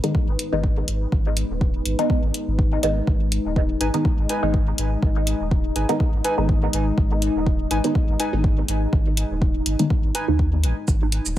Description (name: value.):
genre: dub techno.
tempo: 123 BPM.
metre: 4/4.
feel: swing 55% on 16ths.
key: G# minor.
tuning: A4 = 440 Hz.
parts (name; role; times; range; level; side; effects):
deep dark ambient pad; sustained chords; 0.0-11.4 s; G#3 to D#5; -29 LUFS; left 2 dB; chorus, built-in reverb, sidechain pumping.
filtered dub chord stab; stabs; 0.0-10.5 s; D#3 to D#4; -26 LUFS; equal; phaser, dub echo.
electronic hi-hat and shaker; drums; 0.0-11.3 s; none; -27 LUFS; left 1 dB; none.
electronic kick drum; drums; 0.1-11.0 s; none; -21 LUFS; equal; none.
warm sub bass; bass; 0.3-11.4 s; D#1 to D#2; -24 LUFS; equal; tube saturation, sidechain pumping.
warbly lo-fi synth keys; riff; 3.8-10.3 s; D#4 to G#5; -28 LUFS; equal; chorus, sidechain pumping, dub echo.
room: light reverb.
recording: echo-heavy mix.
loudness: -19 LUFS.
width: side -13 dB against mid.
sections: 0.0-10.9 A section.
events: none.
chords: 0.0 G#m.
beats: 0.15 0.64 | 1.12 1.61 2.10 2.59 | 3.08 3.56 4.05 4.54 | 5.03 5.51 6.00 6.49 | 6.98 7.46 7.95 8.44 | 8.93 9.42 9.90 10.39 | 10.88 11.37.